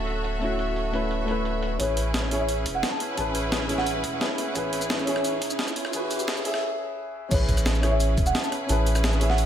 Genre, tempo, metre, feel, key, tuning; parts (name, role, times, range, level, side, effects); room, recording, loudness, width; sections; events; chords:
liquid drum and bass; 174 BPM; 4/4; straight; A major; A4 = 440 Hz
dark grand piano; accompaniment; 0.0-9.5 s; A3 to E5; -28 LUFS; equal; low-pass filter, tape echo
clear studio string section; sustained chords; 0.0-9.5 s; C#4 to E5; -33 LUFS; equal; sidechain pumping
warm sub bass; bass; 0.0-9.5 s; D1 to A1; -27 LUFS; equal
breakbeat sampler-style drum kit; drums; 0.1-9.5 s; cabasa, crash cymbal, hi-hat, rim click, snare drum; -30 LUFS; equal; low-pass filter on hats, studio reverb, low-pass filter on snare, low-pass filter on perc, low-pass filter on cymbals
folk marimba with medium mallets; melody; 1.8-4.1, 7.3-9.5 s; C#5 to A5; -31 LUFS; right 1 dB; low-pass filter, tape echo
electronic kick drum; drums; 1.8-8.2 s; -27 LUFS; equal; high-pass filter on kick, studio reverb
riser; sound effects; 3.6-6.6 s; -36 LUFS; equal
light reverb, digital ambience; high-pass filter; -23 LUFS; side -10 dB against mid
0.0-1.8 A section; 1.8-7.3 B section; 7.3-9.5 C section
build-up 1.8-7.3; filter sweep on grand piano 1.8-7.3; filter sweep on marimba 1.8-7.3; riser 3.6-6.6; break 6.6-7.3; drop 7.3-9.5
0.0 Dmaj9; 1.8 Amaj7